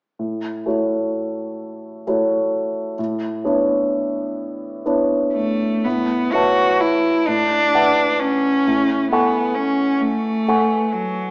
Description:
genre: classical, impressionist duo for cello and grand piano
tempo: 43 BPM (dotted quarters)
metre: 6/8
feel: rubato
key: A major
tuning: A4 = 443 Hz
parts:
  - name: warm grand piano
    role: accompaniment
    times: 0.2-11.3 s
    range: A2 to C#6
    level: -22 LUFS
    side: equal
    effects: none
  - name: rich cello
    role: melody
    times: 5.3-11.3 s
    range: F#3 to F#4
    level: -20 LUFS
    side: equal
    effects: none
room: moderate recital hall reverb, RT60 1.4 s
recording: small speaker sound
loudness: -19 LUFS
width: mono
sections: 0.2-5.8 A section; 5.8-11.3 B section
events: none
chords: 0.2 A6; 3.0 Bm11/A; 5.8 Aadd9; 7.3 D69/A; 8.7 F#madd9/A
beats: | 0.19 1.61 | 2.98 4.36 | 5.85 7.27 | 8.66 10.02

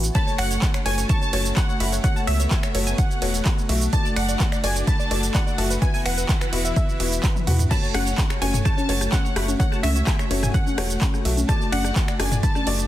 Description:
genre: progressive house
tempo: 127 BPM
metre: 4/4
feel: straight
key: F# minor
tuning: A4 = 440 Hz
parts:
  - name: filtered supersaw swell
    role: sustained chords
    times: 0.0-12.9 s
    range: E3 to B4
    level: -33 LUFS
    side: right 1 dB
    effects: sidechain pumping
  - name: wide unison pluck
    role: arpeggios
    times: 0.0-12.7 s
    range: B4 to C#6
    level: -34 LUFS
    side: right 1 dB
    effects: sidechain pumping, tape echo
  - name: felt-muted upright piano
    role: stabs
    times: 0.0-12.9 s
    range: A3 to G#5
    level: -30 LUFS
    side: left 3 dB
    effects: sidechain pumping, tape echo
  - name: round analog bass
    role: bass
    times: 0.0-12.9 s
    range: E1 to E2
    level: -24 LUFS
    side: equal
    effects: tube saturation, sidechain pumping
  - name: big-room dance drum kit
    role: drums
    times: 0.0-12.9 s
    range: crash cymbal, finger snaps, handclaps, hi-hat, ride cymbal, shaker, toms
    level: -28 LUFS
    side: right 2 dB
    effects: none
  - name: wide unison pluck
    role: melody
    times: 0.1-12.9 s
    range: E5 to A5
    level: -31 LUFS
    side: equal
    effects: digital delay
  - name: warm studio violin section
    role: second line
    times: 0.1-12.9 s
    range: E5 to A5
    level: -33 LUFS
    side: left 1 dB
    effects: sidechain pumping, tape echo
  - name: electronic kick drum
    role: drums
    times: 0.2-12.5 s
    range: none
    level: -21 LUFS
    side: equal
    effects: none
  - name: punchy analog drum machine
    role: percussion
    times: 7.9-12.6 s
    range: congas, rim click, toms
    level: -28 LUFS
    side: left 3 dB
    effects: overdrive, sidechain pumping on snare, sidechain pumping on perc, sidechain pumping on toms
room: digital ambience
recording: dense, heavily limited modern master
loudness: -19 LUFS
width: side -13 dB against mid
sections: 0.0-12.9 A section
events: drum fill 7.4-7.7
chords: 0.1 F#m; 3.9 D/F#; 5.8 Esus2; 7.7 F#m; 11.5 D/F#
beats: | 0.15 0.62 1.09 1.57 | 2.04 2.51 2.98 3.46 | 3.93 4.40 4.87 5.35 | 5.82 6.29 6.76 7.24 | 7.71 8.18 8.65 9.13 | 9.60 10.07 10.54 11.02 | 11.49 11.96 12.43

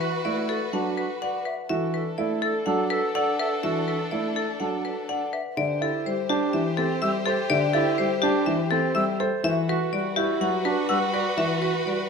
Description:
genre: classical, minimalist pattern music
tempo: 124 BPM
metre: 4/4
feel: straight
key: A dorian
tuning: A4 = 440 Hz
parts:
  - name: marimba with hard mallets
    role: melody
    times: 0.0-12.1 s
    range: G4 to F#5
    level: -28 LUFS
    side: left 6 dB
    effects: none
  - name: warm clarinet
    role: second line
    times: 0.0-12.0 s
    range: F#4 to A4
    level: -32 LUFS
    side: right 4 dB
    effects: none
  - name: dark grand piano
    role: accompaniment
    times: 0.0-12.1 s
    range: D3 to A3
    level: -29 LUFS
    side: left 2 dB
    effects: none
  - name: rich chamber violin section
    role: sustained chords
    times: 0.0-12.1 s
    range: D4 to C5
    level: -32 LUFS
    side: left 2 dB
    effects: none
  - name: warm grand piano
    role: arpeggios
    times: 0.2-11.9 s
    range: C4 to D5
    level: -28 LUFS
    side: right 9 dB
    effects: none
  - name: mellow hollow concert flute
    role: arpeggios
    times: 1.5-11.5 s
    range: E5 to E6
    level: -32 LUFS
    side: left 1 dB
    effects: none
room: moderate recital hall reverb, RT60 1.5 s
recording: minimal, uncompressed stereo recording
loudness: -22 LUFS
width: side -5 dB against mid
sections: 0.0-5.6 A section; 5.6-12.1 A section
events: none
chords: 0.0 D6; 5.6 Am7; 9.4 Gmaj7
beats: 0.25 0.73 1.21 | 1.70 2.18 2.67 3.15 | 3.63 4.12 4.60 5.08 | 5.57 6.05 6.54 7.02 | 7.50 7.99 8.47 8.96 | 9.44 9.92 10.41 10.89 | 11.38 11.86

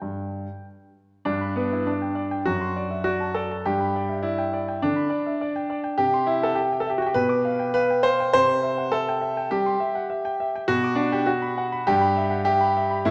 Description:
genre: classical-period piano sonatina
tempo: 102 BPM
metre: 4/4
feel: rubato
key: G major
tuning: A4 = 441 Hz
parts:
  - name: clear concert grand piano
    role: solo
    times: 0.0-13.1 s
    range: F#2 to D6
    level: -24 LUFS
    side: equal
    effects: none
room: wet recital hall reverb, RT60 1.8 s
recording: dark, warm production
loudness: -24 LUFS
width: mono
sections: 0.0-1.3 A section; 1.3-13.1 B section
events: none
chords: 0.0 N.C.; 1.3 G; 2.4 D7/F#; 3.6 G; 6.0 C; 7.2 G7/B; 8.3 C; 10.7 Bm; 11.9 Em/G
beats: 0.02 0.64 | 1.26 1.85 2.44 3.04 | 3.64 4.22 4.81 5.40 | 5.99 6.58 7.16 7.75 | 8.35 8.93 9.51 10.10 | 10.69 11.28 11.87 12.46 | 13.05

